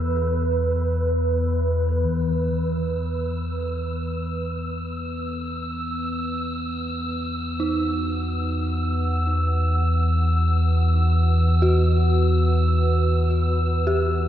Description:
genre	dark ambient drone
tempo	free time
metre	none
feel	none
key	unclear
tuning	A4 = 440 Hz
part	deep dark ambient pad	sustained chords	0.0-14.3 s	E3 to E6	-29 LUFS	equal	chorus, built-in reverb
part	dark detuned synth bell	arpeggios	0.0-14.3 s	D#4 to A4	-28 LUFS	equal	chorus, ping-pong delay
part	deep rumbling drone	drone	0.0-14.3 s	E2 to E3	-22 LUFS	equal	built-in reverb
part	wind-like tuned noise texture	texture	0.0-14.3 s	B4 to E6	-30 LUFS	right 1 dB	built-in reverb
room	wet cathedral reverb, RT60 5.6 s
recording	dark, warm production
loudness	-20 LUFS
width	side -11 dB against mid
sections	0.0-2.1 A section; 2.1-14.3 B section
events	filter sweep on synth drone 2.1-14.3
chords	0.0 Bsus4/E; 2.1 E5

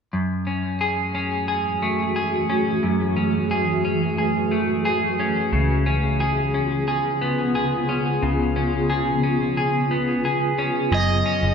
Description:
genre	dream pop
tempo	89 BPM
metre	4/4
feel	straight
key	F# minor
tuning	A4 = 440 Hz
part	granular cloud pad	sustained chords	1.3-11.5 s	C#3 to G#4	-24 LUFS	right 1 dB	built-in reverb
part	clean electric guitar	arpeggios	0.1-11.5 s	F#2 to G#4	-22 LUFS	left 1 dB	analog chorus, tape echo
part	vintage muted picked electric bass	bass	5.5-11.5 s	F#1 to C#2	-25 LUFS	equal	none
part	overdriven slide guitar	melody	10.9-11.5 s	D#5	-22 LUFS	right 1 dB	none
room	wet scoring stage reverb, RT60 1.9 s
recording	none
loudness	-20 LUFS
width	side -6 dB against mid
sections	0.1-10.9 A section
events	none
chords	0.1 F#m9; 5.5 C#7; 10.9 F#m9

